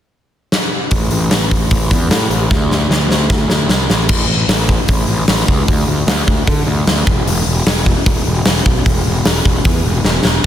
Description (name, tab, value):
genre	punk rock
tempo	151 BPM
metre	4/4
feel	straight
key	unclear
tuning	A4 = 441 Hz
part	big rock drum kit	drums	0.5-10.5 s	crash cymbal, hi-hat, kick drum, snare drum	-13 LUFS	equal	none
part	fuzz picked electric bass	bass	0.9-10.5 s	E1 to D3	-16 LUFS	equal	overdrive
room	little or no reverb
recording	dense, heavily limited modern master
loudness	-12 LUFS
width	side -10 dB against mid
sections	0.9-4.1 A section; 4.1-10.5 B section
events	drum fill 0.5-0.9, 2.5-4.1, 10.0-10.4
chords	none